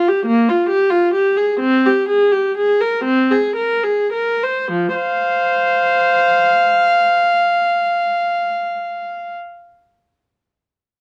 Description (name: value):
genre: classical, baroque-style suite movement for unaccompanied viola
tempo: 34-52 BPM (dotted quarters)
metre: 6/8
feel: rubato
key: F minor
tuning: A4 = 440 Hz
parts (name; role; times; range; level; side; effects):
- warm viola; solo; 0.0-9.3 s; F3 to F5; -16 LUFS; equal; none
room: light reverb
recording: dark, warm production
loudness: -16 LUFS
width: mono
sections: 0.0-4.7 A section; 4.7-11.0 B section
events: slowing down 0.0-4.7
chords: 0.3 Gm7/Bb; 1.6 Abmaj9/C; 3.1 Abadd9/C; 4.7 F5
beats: 0.30 | 1.61 3.05 | 4.71 6.37 | 8.02